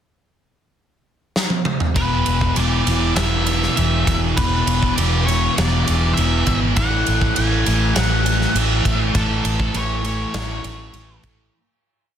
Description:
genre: rock, shoegaze and dream pop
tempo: 100 BPM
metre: 4/4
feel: straight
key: A major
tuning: A4 = 439 Hz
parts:
  - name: big rock drum kit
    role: drums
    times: 1.4-11.4 s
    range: kick drum, ride cymbal, snare drum, toms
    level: -21 LUFS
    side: right 1 dB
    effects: soft clipping on kick, soft clipping on snare
  - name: thick fuzz guitar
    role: riff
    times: 1.9-11.5 s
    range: E2 to A3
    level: -21 LUFS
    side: equal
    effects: distortion, wide subtle chorus
  - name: octave-fuzz lead guitar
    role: melody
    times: 2.0-11.2 s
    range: A4 to G#5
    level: -24 LUFS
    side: left 1 dB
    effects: distortion, plate reverb, tape echo
  - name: vintage muted fingered electric bass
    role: bass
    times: 2.0-11.5 s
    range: E1 to A1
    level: -21 LUFS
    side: equal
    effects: none
room: light reverb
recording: dense, heavily limited modern master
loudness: -16 LUFS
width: side -9 dB against mid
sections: 0.0-2.0 pickup bar; 2.0-11.5 A section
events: drum fill 1.4-2.0; fade-out 9.2-11.5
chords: 0.0 N.C.; 2.0 E7(no3); 6.8 A6

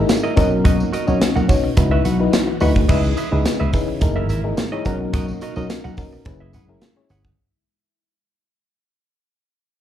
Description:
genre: early-eighties boogie funk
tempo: 107 BPM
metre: 4/4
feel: straight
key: C# dorian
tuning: A4 = 438 Hz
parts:
  - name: FM electric piano with auto-pan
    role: accompaniment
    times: 0.0-7.3 s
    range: C#4 to C#5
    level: -23 LUFS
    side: left 3 dB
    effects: slapback echo
  - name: string machine, full ensemble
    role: sustained chords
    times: 0.0-7.4 s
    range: B2 to F#4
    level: -28 LUFS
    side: left 1 dB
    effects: ensemble chorus
  - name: slap bass with an envelope filter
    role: bass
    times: 0.0-7.3 s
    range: F#1 to C#3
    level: -20 LUFS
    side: equal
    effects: none
  - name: semi-hollow electric guitar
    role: riff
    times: 0.1-7.3 s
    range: E4 to F#5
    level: -28 LUFS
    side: right 6 dB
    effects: wide subtle chorus, slapback echo
  - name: modern studio drum kit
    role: drums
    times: 0.1-7.4 s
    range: crash cymbal, hi-hat, kick drum, snare drum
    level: -20 LUFS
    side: equal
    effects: none
  - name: tambourine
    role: percussion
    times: 0.1-7.2 s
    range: none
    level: -39 LUFS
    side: left 2 dB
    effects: none
room: light reverb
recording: live gig heard through the venue's PA, club reverb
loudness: -16 LUFS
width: side -10 dB against mid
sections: 0.0-2.9 A section; 2.9-7.4 B section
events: fade-out 2.9-7.4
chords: 0.4 Bmaj7; 1.8 C#m11; 2.9 C#m7; 4.0 F#13; 4.9 Bmaj7; 6.3 F#9sus4

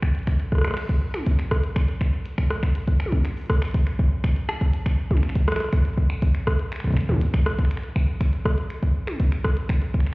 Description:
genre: IDM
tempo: 121 BPM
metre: 4/4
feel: straight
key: none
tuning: none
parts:
  - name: electronic kick drum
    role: drums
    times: 0.0-10.0 s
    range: none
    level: -21 LUFS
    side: equal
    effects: overdrive
  - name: glitchy drum kit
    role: drums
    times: 0.0-10.1 s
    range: crash cymbal, finger snaps, hi-hat, rim click, toms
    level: -29 LUFS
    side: equal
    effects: digital delay
room: digital ambience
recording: heard muffled through a wall, stone room reverb, EQ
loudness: -20 LUFS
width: side -23 dB against mid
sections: 0.0-10.1 A section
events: none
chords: none

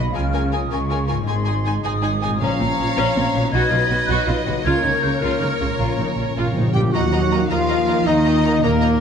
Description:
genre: cinematic, heroic adventure film score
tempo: 106 BPM (dotted quarters)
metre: 6/8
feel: straight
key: unclear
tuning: A4 = 439 Hz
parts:
  - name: rich symphonic violin section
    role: melody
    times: 0.0-9.0 s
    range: Bb4 to Ab5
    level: -28 LUFS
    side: left 4 dB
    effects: none
  - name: rich symphonic violin section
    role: second line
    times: 0.0-8.9 s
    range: Ab4 to Bb5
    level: -28 LUFS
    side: left 1 dB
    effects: none
  - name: small flute group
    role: second line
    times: 0.0-9.0 s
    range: Bb4 to Ab6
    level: -25 LUFS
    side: left 2 dB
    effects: none
  - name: clear symphonic viola section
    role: accompaniment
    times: 0.0-8.9 s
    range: Bb3 to F#4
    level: -28 LUFS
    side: equal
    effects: none
  - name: warm French horn section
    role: sustained chords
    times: 0.0-9.0 s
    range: F3 to G4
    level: -25 LUFS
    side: left 3 dB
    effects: none
  - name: concert harp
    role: arpeggios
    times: 0.0-9.0 s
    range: Ab2 to F5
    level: -28 LUFS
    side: left 7 dB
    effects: none
  - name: rich symphonic double bass section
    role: bass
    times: 0.0-9.0 s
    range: Ab1 to Eb2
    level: -25 LUFS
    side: right 4 dB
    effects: none
  - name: warm symphonic cello section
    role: bass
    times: 0.0-9.0 s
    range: Ab2 to G3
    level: -25 LUFS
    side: right 2 dB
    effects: none
  - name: timpani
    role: percussion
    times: 2.4-2.9, 5.8-7.5 s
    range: Bb2 to Eb3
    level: -25 LUFS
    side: equal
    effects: none
  - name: mellow cor anglais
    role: second line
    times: 6.7-9.0 s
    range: Bb3 to G4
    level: -28 LUFS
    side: right 3 dB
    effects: none
  - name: mellow trumpet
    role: stabs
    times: 6.8-9.0 s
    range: Bb3 to G4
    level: -27 LUFS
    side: equal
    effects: none
  - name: mellow tuba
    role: bass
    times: 6.9-9.0 s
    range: Eb2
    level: -25 LUFS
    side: right 4 dB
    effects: none
  - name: warm trombone section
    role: sustained chords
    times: 7.3-8.5 s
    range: Eb3 to Bb3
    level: -32 LUFS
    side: right 3 dB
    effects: none
room: moderate scoring stage reverb, RT60 1.8 s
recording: nothing above 10.6 kHz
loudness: -17 LUFS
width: side -7 dB against mid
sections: 0.0-6.9 A section; 6.9-9.0 B section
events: timpani fill 5.8-6.9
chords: 0.2 Db6; 1.3 Ab; 2.4 Bbm; 3.5 B; 4.7 Db6; 5.8 Bbm; 6.9 Ebm

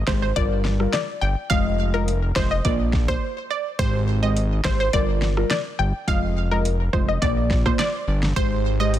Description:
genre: dancehall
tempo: 105 BPM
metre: 4/4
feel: straight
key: G phrygian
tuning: A4 = 440 Hz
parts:
  - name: fat analog bass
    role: bass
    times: 0.0-9.0 s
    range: F1 to Bb1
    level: -22 LUFS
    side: equal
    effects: none
  - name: analog pluck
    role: melody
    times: 0.1-8.9 s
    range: Bb4 to G5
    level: -26 LUFS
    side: equal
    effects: chorus, digital delay
  - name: deep mellow chord stab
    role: accompaniment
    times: 0.1-8.9 s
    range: G3 to Eb5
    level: -27 LUFS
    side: equal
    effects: chorus, phaser, sidechain pumping
  - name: deep house drum kit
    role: drums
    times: 0.1-9.0 s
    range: handclaps, hi-hat, kick drum, rim click, snare drum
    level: -24 LUFS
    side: equal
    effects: vintage 12-bit sampler grit
room: little or no reverb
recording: dense, heavily limited modern master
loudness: -19 LUFS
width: side -12 dB against mid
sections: 0.0-9.0 A section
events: break 3.2-3.8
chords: 0.4 Gm7; 1.5 Fm7; 2.6 Bb; 3.8 Abmaj7; 4.9 Gm7; 6.1 Fm7; 7.2 Bb; 8.4 Abmaj7

